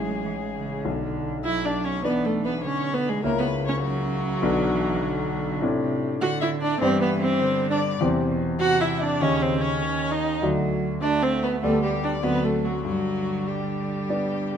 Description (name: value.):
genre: quick classical-period movement for piano quartet.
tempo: 100 BPM.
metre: 4/4.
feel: straight.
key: G major from 5.6 s.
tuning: A4 = 441 Hz.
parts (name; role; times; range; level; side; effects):
rich violin; melody; 0.0-14.6 s; F#4 to F#5; -30 LUFS; left 8 dB; none.
rich cello; second line; 0.0-14.6 s; B2 to A3; -31 LUFS; right 6 dB; none.
clear concert grand piano; accompaniment; 0.0-14.6 s; A1 to Eb5; -26 LUFS; left 3 dB; none.
clear viola; accompaniment; 0.0-14.6 s; F#3 to F#4; -26 LUFS; right 4 dB; none.
room: moderate recital hall reverb, RT60 1.4 s.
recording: close, detailed microphones.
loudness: -22 LUFS.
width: side -8 dB against mid.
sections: 0.0-14.6 A section.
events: none.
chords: 0.0 A; 0.9 Bm; 3.2 F#7/C#; 4.4 Bm; 5.6 D5/A; 6.8 G; 8.0 C/E; 9.2 Eb7; 10.4 D; 11.6 G/D; 12.2 D7; 12.9 G.